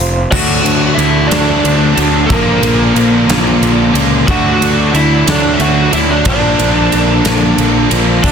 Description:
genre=quiet-loud alternative rock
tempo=61 BPM (dotted quarters)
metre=6/8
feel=straight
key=unclear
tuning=A4 = 440 Hz
part: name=fuzz picked electric bass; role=bass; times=0.0-8.3 s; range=F1 to D2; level=-15 LUFS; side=equal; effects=overdrive
part: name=big rock drum kit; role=drums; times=0.0-8.3 s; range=crash cymbal, hi-hat, kick drum, ride cymbal, snare drum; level=-16 LUFS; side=right 1 dB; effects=soft clipping on kick
part: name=lead guitar through a small cranked amp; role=melody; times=0.3-8.3 s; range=Bb3 to F#5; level=-15 LUFS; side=right 1 dB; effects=overdrive
part: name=warm studio string section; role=sustained chords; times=0.3-8.3 s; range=A4 to D6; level=-27 LUFS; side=left 2 dB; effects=none
part: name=overdriven electric guitar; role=riff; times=0.3-8.3 s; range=Bb2 to D4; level=-17 LUFS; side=equal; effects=none
part: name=overdriven electric guitar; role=riff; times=0.3-8.3 s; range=Bb2 to D4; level=-17 LUFS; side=equal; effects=none
room=little or no reverb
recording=dense, heavily limited modern master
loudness=-9 LUFS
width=side -7 dB against mid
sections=0.3-8.3 A section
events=none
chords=0.3 D; 2.3 Bb; 4.3 D; 6.3 Bb

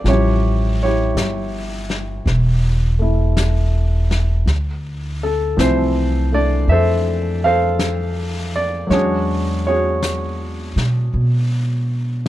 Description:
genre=jazz ballad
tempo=54 BPM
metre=4/4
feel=swing 67% on 8ths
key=unclear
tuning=A4 = 436 Hz
part: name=clear baby grand piano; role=accompaniment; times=0.0-12.3 s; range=E3 to F5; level=-19 LUFS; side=equal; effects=none
part: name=upright bass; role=bass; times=0.0-12.3 s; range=E1 to B2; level=-18 LUFS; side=equal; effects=none
part: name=jazz brush drum kit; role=drums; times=0.1-12.3 s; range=brushed snare drum, hi-hat, snare drum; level=-28 LUFS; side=left 3 dB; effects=none
room=little or no reverb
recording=dark, warm production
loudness=-16 LUFS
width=side -14 dB against mid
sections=0.0-12.3 A section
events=none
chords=0.0 A7b13; 4.5 Dm9; 8.9 E13

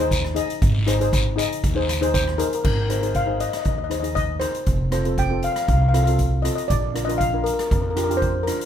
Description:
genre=calypso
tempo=118 BPM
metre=4/4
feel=straight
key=Ab major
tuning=A4 = 440 Hz
part: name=steel pan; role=accompaniment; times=0.0-8.7 s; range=C4 to Eb5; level=-26 LUFS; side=left 2 dB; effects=none
part: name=upright bass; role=bass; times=0.0-8.5 s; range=F1 to F2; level=-23 LUFS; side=right 1 dB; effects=none
part: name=street-band drum kit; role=drums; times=0.1-8.7 s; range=crash cymbal, hi-hat, kick drum, rim click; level=-25 LUFS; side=equal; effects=none
part: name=guiro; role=percussion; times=0.1-2.3 s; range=none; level=-30 LUFS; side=left 3 dB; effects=none
part: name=steel pan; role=melody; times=2.1-8.7 s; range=Bb4 to G5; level=-25 LUFS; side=left 2 dB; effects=none
room=light reverb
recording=minimal, uncompressed stereo recording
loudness=-19 LUFS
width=side -9 dB against mid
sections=0.0-2.6 A section; 2.6-8.7 B section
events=none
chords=0.0 Ab; 2.6 Abadd9; 4.7 F; 6.7 Bb

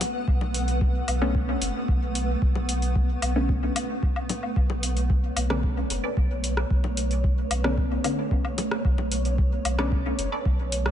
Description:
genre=dub techno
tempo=112 BPM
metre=4/4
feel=straight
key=B minor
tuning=A4 = 440 Hz
part: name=granular cloud pad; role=sustained chords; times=0.0-10.9 s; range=A3 to F#5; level=-31 LUFS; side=right 1 dB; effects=built-in reverb, sidechain pumping
part: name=booming analog drum machine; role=drums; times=0.0-10.9 s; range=hi-hat, rim click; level=-32 LUFS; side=equal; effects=none
part: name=congas and woodblock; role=percussion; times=0.0-9.8 s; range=none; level=-35 LUFS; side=left 5 dB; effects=sidechain pumping on perc, dub echo
part: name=warm sub bass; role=bass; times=0.3-10.9 s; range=F#1 to B1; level=-27 LUFS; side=equal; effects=sidechain pumping
part: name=electronic kick drum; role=drums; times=0.3-10.6 s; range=none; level=-25 LUFS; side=equal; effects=none
part: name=filtered dub chord stab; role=stabs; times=1.2-10.0 s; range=D3 to C#4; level=-30 LUFS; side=left 2 dB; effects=chorus, phaser, sidechain pumping, dub echo
part: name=filtered dub chord stab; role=riff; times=5.5-10.5 s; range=C#4 to D5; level=-36 LUFS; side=right 3 dB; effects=phaser, sidechain pumping, dub echo
room=light reverb, digital ambience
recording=nothing above 10.6 kHz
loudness=-23 LUFS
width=side -10 dB against mid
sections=0.0-10.9 A section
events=none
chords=0.0 Bm9

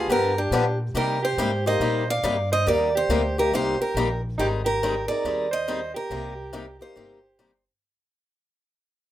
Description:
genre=acoustic string swing (jazz manouche)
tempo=140 BPM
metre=4/4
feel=swing 64% on 8ths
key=C minor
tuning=A4 = 441 Hz
part: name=picked steel-string acoustic guitar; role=melody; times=0.0-7.6 s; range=G4 to F5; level=-26 LUFS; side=right 2 dB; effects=none
part: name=warm soprano saxophone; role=second line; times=0.0-7.6 s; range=D4 to D5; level=-29 LUFS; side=right 2 dB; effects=none
part: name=picked swing-style acoustic guitar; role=accompaniment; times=0.0-7.5 s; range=C3 to Ab4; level=-26 LUFS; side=left 4 dB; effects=none
part: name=upright bass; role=bass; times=0.0-7.7 s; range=G1 to C3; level=-29 LUFS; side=equal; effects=none
room=moderate small room reverb, RT60 0.6 s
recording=rough home demo mix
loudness=-21 LUFS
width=side -13 dB against mid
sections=0.0-4.4 A section; 4.4-7.8 B section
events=fade-out 4.4-7.8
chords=0.0 G7#9; 1.0 Cm7; 4.4 Abmaj9#11; 6.1 Cm7

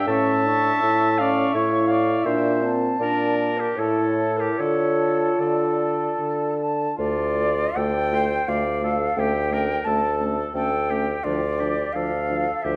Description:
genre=classical, slow romantic movement for wind quintet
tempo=72-88 BPM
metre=3/4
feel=rubato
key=D minor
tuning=A4 = 440 Hz
part: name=concert flute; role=melody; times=0.0-12.8 s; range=D5 to C#6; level=-29 LUFS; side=equal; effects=none
part: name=warm oboe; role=second line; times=0.0-12.8 s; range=F4 to E5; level=-31 LUFS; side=equal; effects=none
part: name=warm French horn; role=accompaniment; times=0.0-12.8 s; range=F3 to F4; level=-29 LUFS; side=equal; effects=none
part: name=warm clarinet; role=accompaniment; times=0.0-12.8 s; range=C#4 to A5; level=-30 LUFS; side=equal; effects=none
part: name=mellow bassoon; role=bass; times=0.1-12.8 s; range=D2 to D3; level=-27 LUFS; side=equal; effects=none
room=moderate scoring stage reverb, RT60 1.7 s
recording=dark, warm production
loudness=-22 LUFS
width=mono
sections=0.0-7.0 A section; 7.0-12.8 B section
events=none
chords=0.1 A; 2.3 Bbmaj9#11; 3.8 A; 4.6 Dm; 9.2 A7/D; 11.2 Dm

